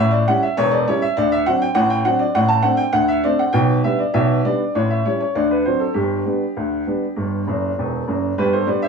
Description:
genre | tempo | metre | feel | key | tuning
ragtime piano | 100 BPM | 2/4 | straight | G major | A4 = 445 Hz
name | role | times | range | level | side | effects
clear upright piano | solo | 0.0-8.9 s | E1 to A5 | -16 LUFS | equal | none
room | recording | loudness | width
moderate small room ambience, RT60 0.5 s | band playing live in one room, small room ambience | -16 LUFS | side -5 dB against mid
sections
0.0-8.4 A section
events
upright piano fill 7.5-8.4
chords
0.0 A7; 1.2 D7; 3.5 G/B; 4.7 A7; 5.3 D7; 5.9 G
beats
0.56 | 1.16 1.75 | 2.35 2.95 | 3.54 4.14 | 4.74 5.34 | 5.95 6.56 | 7.17 7.77 | 8.38

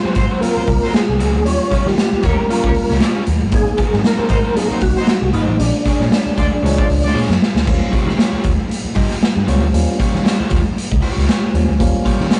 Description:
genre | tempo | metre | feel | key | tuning
funk | 116 BPM | 4/4 | swing 56% on 16ths | Eb mixolydian | A4 = 440 Hz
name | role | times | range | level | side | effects
percussive tonewheel organ | melody | 0.0-7.1 s | D4 to Db5 | -23 LUFS | equal | chorus vibrato, fast rotary speaker
tine electric piano | stabs | 0.0-12.4 s | F3 to C#5 | -24 LUFS | equal | slapback echo
vintage muted picked electric bass | bass | 0.0-12.3 s | G1 to Eb3 | -21 LUFS | equal | none
crunchy overdriven guitar | accompaniment | 0.1-12.4 s | Gb3 to Eb5 | -28 LUFS | equal | none
raw garage drum kit | drums | 0.1-12.4 s | crash cymbal, hi-hat, kick drum, snare drum | -19 LUFS | equal | none
clear horn section | second line | 0.2-7.2 s | Gb3 to D5 | -29 LUFS | equal | none
congas | percussion | 0.4-12.4 s | none | -31 LUFS | equal | none
room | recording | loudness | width
light reverb | rough rehearsal-room recording, warm saturation, vinyl crackle, nothing above 10.8 kHz | -16 LUFS | mono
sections
0.0-7.7 A section; 7.7-12.4 B section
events
drum fill 7.2-7.7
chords
0.0 Ab13; 1.5 Eb9; 3.5 Ab9; 5.6 Bb7#9; 7.7 Eb9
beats
0.42 0.94 | 1.46 1.98 2.50 3.01 | 3.53 4.05 4.57 5.08 | 5.60 6.12 6.63 7.15 | 7.67 8.19 8.70 9.22 | 9.74 10.26 10.77 11.29 | 11.80 12.32

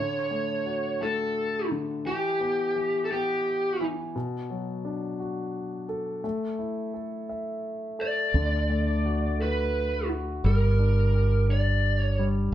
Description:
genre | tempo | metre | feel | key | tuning
six-eight pop ballad | 57 BPM (dotted quarters) | 6/8 | straight | D major | A4 = 440 Hz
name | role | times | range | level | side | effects
lead guitar through a small cranked amp | melody | 0.0-3.9, 8.0-12.2 s | G4 to D5 | -27 LUFS | equal | overdrive
warm concert grand piano | accompaniment | 0.0-12.5 s | B2 to E5 | -31 LUFS | left 2 dB | none
mellow fretless electric bass | bass | 8.3-12.5 s | G1 to D2 | -24 LUFS | equal | none
room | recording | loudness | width
moderate stone room reverb, RT60 1.0 s | band playing live in one room | -25 LUFS | side -12 dB against mid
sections
0.0-12.5 A section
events
none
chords
0.0 Dmaj7; 2.1 Em; 4.1 Bm7; 6.2 A5; 8.3 D; 10.4 Gm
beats
1.01 | 2.06 3.10 | 4.15 5.19 | 6.24 7.29 | 8.35 9.40 | 10.45 11.49 | 12.53

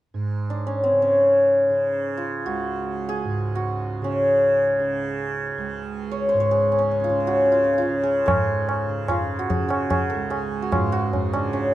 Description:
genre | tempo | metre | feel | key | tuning
indian classical, Hindustani | free time | none | none | C# major | A4 = 440 Hz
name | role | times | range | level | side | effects
tanpura | drone | 0.1-11.7 s | C#2 to C#3 | -27 LUFS | right 3 dB | none
santur | melody | 0.5-11.7 s | B#3 to C#5 | -21 LUFS | left 1 dB | none
tabla | percussion | 8.3-11.7 s | none | -24 LUFS | left 1 dB | none
room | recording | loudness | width
light reverb | dry, close 1970s-style studio recording | -20 LUFS | side -14 dB against mid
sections
0.1-8.3 A section; 8.3-11.7 B section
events
none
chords
none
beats
free time

